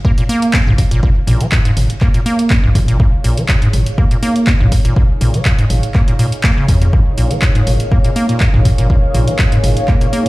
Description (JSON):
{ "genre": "acid house", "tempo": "122 BPM", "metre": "4/4", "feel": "swing 53% on 16ths", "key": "Bb minor", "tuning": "A4 = 440 Hz", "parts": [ { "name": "acid bass, square", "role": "riff", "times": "0.0-10.3 s", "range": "Ab2 to Db4", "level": "-16 LUFS", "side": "equal", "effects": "tube saturation, sidechain pumping, digital delay" }, { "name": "electronic kick drum", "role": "drums", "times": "0.0-10.0 s", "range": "none", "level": "-13 LUFS", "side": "equal", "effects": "none" }, { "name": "airy breathy pad", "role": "texture", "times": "0.0-10.3 s", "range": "Eb4 to F5", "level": "-27 LUFS", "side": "equal", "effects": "chorus, phaser, sidechain pumping" }, { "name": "punchy analog drum machine", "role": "drums", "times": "0.2-10.3 s", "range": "handclaps, hi-hat, toms", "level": "-19 LUFS", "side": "equal", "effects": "overdrive" }, { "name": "saturated sub bass", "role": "bass", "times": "0.7-9.7 s", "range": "Ab1 to F2", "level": "-16 LUFS", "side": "equal", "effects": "sidechain pumping" }, { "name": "dark analog pad", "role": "sustained chords", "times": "6.9-10.3 s", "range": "Bb3 to F5", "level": "-23 LUFS", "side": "equal", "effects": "wide subtle chorus, sidechain pumping" } ], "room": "little or no reverb", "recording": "played on a big sound system in a bare room, large studio reverb", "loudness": "-11 LUFS", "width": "side -20 dB against mid", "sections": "0.0-10.3 A section", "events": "fade-in on analog synth pad 0.0-10.3", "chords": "0.0 Bbm" }